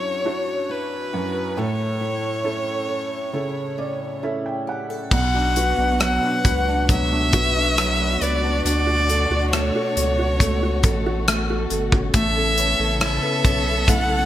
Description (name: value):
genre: pop ballad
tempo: 68 BPM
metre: 4/4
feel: straight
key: D major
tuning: A4 = 441 Hz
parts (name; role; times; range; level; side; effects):
- warm violin; melody; 0.0-14.3 s; B4 to F#5; -23 LUFS; equal; none
- felt-muted upright piano; accompaniment; 0.0-14.3 s; F#2 to G5; -27 LUFS; right 3 dB; none
- picked steel-string acoustic guitar; arpeggios; 0.0-14.3 s; F#2 to B4; -30 LUFS; left 6 dB; analog chorus, digital delay
- warm studio string section; sustained chords; 5.1-14.3 s; B2 to A4; -29 LUFS; left 2 dB; none
- saturated sub bass; bass; 5.1-14.3 s; G1 to D2; -24 LUFS; equal; none
- modern studio drum kit; drums; 5.1-14.1 s; crash cymbal, hi-hat, kick drum, rim click; -21 LUFS; equal; gated reverb
room: moderate plate reverb, RT60 1.8 s, studio ambience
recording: bright 1980s-style digital production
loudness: -18 LUFS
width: side -12 dB against mid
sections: 0.0-5.1 A section; 5.1-14.3 B section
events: felt piano fill 3.3-5.1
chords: 0.0 Dadd9/F#; 1.6 A; 5.1 Bm; 8.7 Dmaj7; 12.1 Aadd9